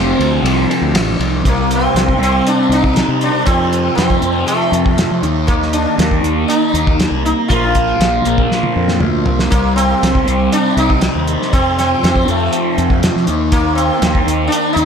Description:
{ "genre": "psychedelic rock", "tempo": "119 BPM", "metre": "4/4", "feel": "straight", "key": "C dorian", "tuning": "A4 = 440 Hz", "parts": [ { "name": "sitar", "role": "melody", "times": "0.0-14.8 s", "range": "A3 to F4", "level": "-18 LUFS", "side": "equal", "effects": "ping-pong delay" }, { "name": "fuzz guitar", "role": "riff", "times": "0.0-14.8 s", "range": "F2 to Eb4", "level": "-17 LUFS", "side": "equal", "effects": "distortion, phaser" }, { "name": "fuzz fingered electric bass", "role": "bass", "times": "0.0-14.8 s", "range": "F1 to F3", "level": "-18 LUFS", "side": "equal", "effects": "overdrive" }, { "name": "cloth-damped thuddy drum kit", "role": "drums", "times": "0.2-14.8 s", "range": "hi-hat, kick drum, ride cymbal, snare drum, toms", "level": "-18 LUFS", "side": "equal", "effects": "none" } ], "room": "moderate plate reverb, RT60 1.3 s", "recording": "dreamy mix soaked in reverb", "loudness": "-12 LUFS", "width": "side -7 dB against mid", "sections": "0.0-1.4 A section; 1.4-14.8 B section", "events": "drum fill 8.5-9.5", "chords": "0.0 F; 1.4 Cm; 3.5 F; 5.2 Eb5; 7.5 Bb5; 9.5 Cm; 11.5 F; 13.3 Eb5", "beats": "0.44 0.94 | 1.45 1.95 2.46 2.96 | 3.46 3.97 4.47 4.98 | 5.48 5.99 6.49 6.99 | 7.50 8.00 8.50 9.01 | 9.51 10.01 10.51 11.01 | 11.51 12.02 12.52 13.02 | 13.52 14.02 14.52" }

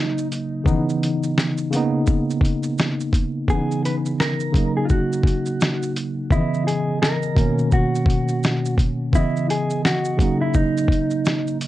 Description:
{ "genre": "lo-fi hip hop", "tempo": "85 BPM", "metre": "4/4", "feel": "swing 61% on 16ths", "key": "C# dorian", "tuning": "A4 = 440 Hz", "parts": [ { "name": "mellow electric guitar", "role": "melody", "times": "0.0-11.6 s", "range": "D#4 to B4", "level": "-25 LUFS", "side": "right 2 dB", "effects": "plate reverb" }, { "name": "tine electric piano", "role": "accompaniment", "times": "0.0-11.7 s", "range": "B2 to D#5", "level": "-22 LUFS", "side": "equal", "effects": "slow stereo tremolo, cassette tape" }, { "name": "dusty soul sampler-style drum kit", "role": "drums", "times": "0.2-11.7 s", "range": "hi-hat, kick drum, shaker, snare drum", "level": "-20 LUFS", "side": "equal", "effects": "overdrive" } ], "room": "moderate studio ambience, RT60 0.5 s", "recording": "none", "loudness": "-18 LUFS", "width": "side -15 dB against mid", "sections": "0.0-11.7 A section", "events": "none", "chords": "0.0 D#m7; 0.7 C#m9; 1.7 Bmaj9; 3.5 C#m9; 4.5 D#m7; 6.3 C#m9; 7.4 Bmaj9; 9.1 C#m9; 10.2 D#m7", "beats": "| 0.66 1.37 2.07 2.78 | 3.48 4.19 4.90 5.60 | 6.31 7.01 7.72 8.43 | 9.13 9.84 10.54 11.25" }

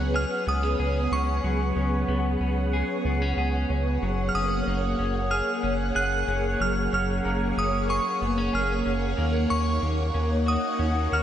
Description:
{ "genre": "dream pop", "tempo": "93 BPM", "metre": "4/4", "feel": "straight", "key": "F# major", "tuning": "A4 = 440 Hz", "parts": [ { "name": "glassy synth bell", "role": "melody", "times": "0.0-11.2 s", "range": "C#6 to F#6", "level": "-29 LUFS", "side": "right 1 dB", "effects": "chorus, diffuse ambient delay" }, { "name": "phased string machine", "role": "sustained chords", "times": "0.0-11.2 s", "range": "A#3 to F#5", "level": "-28 LUFS", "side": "equal", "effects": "ensemble chorus, phaser" }, { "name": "clean electric guitar", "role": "arpeggios", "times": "0.0-11.2 s", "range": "F#3 to G#4", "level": "-31 LUFS", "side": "left 2 dB", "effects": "lush chorus, diffuse ambient delay" }, { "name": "round analog bass", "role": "bass", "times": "0.0-11.2 s", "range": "F#1 to D#2", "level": "-27 LUFS", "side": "equal", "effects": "none" }, { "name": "concert harp", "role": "texture", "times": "4.7-8.7 s", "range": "C#5 to A#5", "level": "-45 LUFS", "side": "right 2 dB", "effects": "none" } ], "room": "wet lush hall reverb, RT60 3.3 s", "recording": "dreamy mix soaked in reverb, nothing above 10.6 kHz", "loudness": "-23 LUFS", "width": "side -10 dB against mid", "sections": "0.0-11.2 A section", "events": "none", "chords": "0.0 C#7sus4; 4.0 F#add9; 9.2 D#m7", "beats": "0.15 0.79 | 1.44 2.08 2.73 3.38 | 4.02 4.67 5.31 5.96 | 6.60 7.25 7.89 8.54 | 9.18 9.83 10.47 11.12" }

